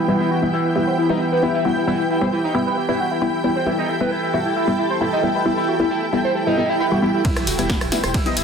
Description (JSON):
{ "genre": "driving peak-time techno", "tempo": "134 BPM", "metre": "4/4", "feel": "straight", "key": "E minor", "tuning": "A4 = 443 Hz", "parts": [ { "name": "overdriven synth lead", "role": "riff", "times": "0.0-8.4 s", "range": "D#4 to C5", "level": "-23 LUFS", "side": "equal", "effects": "phaser, tube saturation, wide subtle chorus, sidechain pumping, tape echo" }, { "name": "analog drone", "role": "drone", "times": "0.0-7.3 s", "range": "E3 to B3", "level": "-27 LUFS", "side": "right 1 dB", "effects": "chorus, sidechain pumping" }, { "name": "granular cloud pad", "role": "texture", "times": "0.0-8.4 s", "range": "E4 to G5", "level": "-23 LUFS", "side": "right 1 dB", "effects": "built-in reverb, sidechain pumping" }, { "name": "filtered dub chord stab", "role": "stabs", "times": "0.1-8.4 s", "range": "G3 to E4", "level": "-22 LUFS", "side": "left 1 dB", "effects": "phaser, sidechain pumping, ping-pong delay" }, { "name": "swell and impact", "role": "sound effects", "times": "6.6-8.4 s", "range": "none", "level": "-29 LUFS", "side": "right 4 dB", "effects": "none" }, { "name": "electronic kick drum", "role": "drums", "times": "7.2-8.2 s", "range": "none", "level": "-22 LUFS", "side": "right 1 dB", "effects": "none" }, { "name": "punchy analog drum machine", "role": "drums", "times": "7.2-8.4 s", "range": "hi-hat, ride cymbal, rim click, snare drum, tambourine", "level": "-23 LUFS", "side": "equal", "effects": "none" }, { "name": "saturated sub bass", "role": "bass", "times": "7.5-8.4 s", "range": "E1", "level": "-29 LUFS", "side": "right 1 dB", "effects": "overdrive, sidechain pumping, low-pass filter" } ], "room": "wet stone room reverb, RT60 1.0 s, digital ambience", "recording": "dense, heavily limited modern master", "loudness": "-17 LUFS", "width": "side -6 dB against mid", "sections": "0.0-7.2 A section; 7.2-8.4 B section", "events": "filter sweep on analog synth lead 0.0-7.2; swell 6.6-7.2; drop 7.2-8.4; impact 7.2-8.4", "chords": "0.0 Em" }